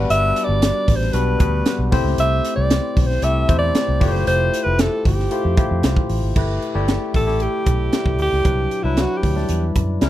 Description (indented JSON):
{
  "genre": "polished 1980s jazz-funk pop",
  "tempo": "115 BPM",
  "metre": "4/4",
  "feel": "straight",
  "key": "G major",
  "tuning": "A4 = 437 Hz",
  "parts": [
    { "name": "barky tine electric piano", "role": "accompaniment", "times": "0.0-10.1 s", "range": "F#3 to D5", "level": "-24 LUFS", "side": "left 4 dB", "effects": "wide subtle chorus" },
    { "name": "vintage muted fingered electric bass", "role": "bass", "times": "0.0-10.1 s", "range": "F1 to F#2", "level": "-20 LUFS", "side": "equal", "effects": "none" },
    { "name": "breathy alto saxophone", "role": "melody", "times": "0.1-9.7 s", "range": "E4 to E5", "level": "-22 LUFS", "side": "right 1 dB", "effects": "slapback echo" },
    { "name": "crisp fusion drum kit", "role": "drums", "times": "0.1-10.1 s", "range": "crash cymbal, hi-hat, kick drum, snare drum", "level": "-21 LUFS", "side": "equal", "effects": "none" }
  ],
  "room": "studio reverb",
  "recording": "none",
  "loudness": "-16 LUFS",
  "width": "side -13 dB against mid",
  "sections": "0.0-6.4 A section; 6.4-10.1 B section",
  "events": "alto saxophone solo 6.4-10.1",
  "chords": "0.0 Gmaj7; 1.9 C6; 4.0 Fmaj9; 6.4 G69; 8.5 Cmaj9#11",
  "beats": "| 0.10 0.63 1.15 1.67 | 2.19 2.71 3.23 3.75 | 4.27 4.79 5.32 5.84 | 6.36 6.88 7.41 7.93 | 8.45 8.97 9.50 10.02"
}